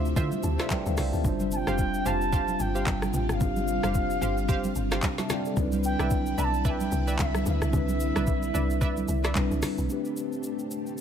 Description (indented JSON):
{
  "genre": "amapiano",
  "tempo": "111 BPM",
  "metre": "4/4",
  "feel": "swing 58% on 16ths",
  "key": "unclear",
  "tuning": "A4 = 439 Hz",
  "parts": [
    { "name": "mellow tine electric piano", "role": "accompaniment", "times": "0.0-11.0 s", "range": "G3 to A5", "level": "-31 LUFS", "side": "left 1 dB", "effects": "medium stereo tremolo" },
    { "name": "string machine, full ensemble", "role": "sustained chords", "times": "0.0-11.0 s", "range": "C3 to E5", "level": "-35 LUFS", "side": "left 1 dB", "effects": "ensemble chorus" },
    { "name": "analog pluck", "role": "stabs", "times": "0.0-9.3 s", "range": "F4 to F5", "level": "-36 LUFS", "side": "right 4 dB", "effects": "chorus, ping-pong delay" },
    { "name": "deep log drum bass", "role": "bass", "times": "0.0-9.9 s", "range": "F1 to D3", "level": "-29 LUFS", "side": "equal", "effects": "none" },
    { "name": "smooth R&B drum kit", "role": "drums", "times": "0.1-11.0 s", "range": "handclaps, hi-hat, kick drum, rim click, shaker, snare drum", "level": "-30 LUFS", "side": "equal", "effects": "none" },
    { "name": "congas", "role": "percussion", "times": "0.2-9.8 s", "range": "none", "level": "-35 LUFS", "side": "right 3 dB", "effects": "none" },
    { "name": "bright reedy bansuri", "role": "melody", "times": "1.5-9.3 s", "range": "E5 to B5", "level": "-33 LUFS", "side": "right 1 dB", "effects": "ping-pong delay" }
  ],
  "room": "light reverb, digital ambience",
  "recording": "none",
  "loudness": "-24 LUFS",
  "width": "side -8 dB against mid",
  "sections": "0.0-9.9 A section; 9.9-11.0 B section",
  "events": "drop 0.0-9.9; tine electric piano fill 0.2-1.2",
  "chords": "0.0 Dm9; 1.2 G7sus4; 5.6 Cmaj9; 9.9 Am11"
}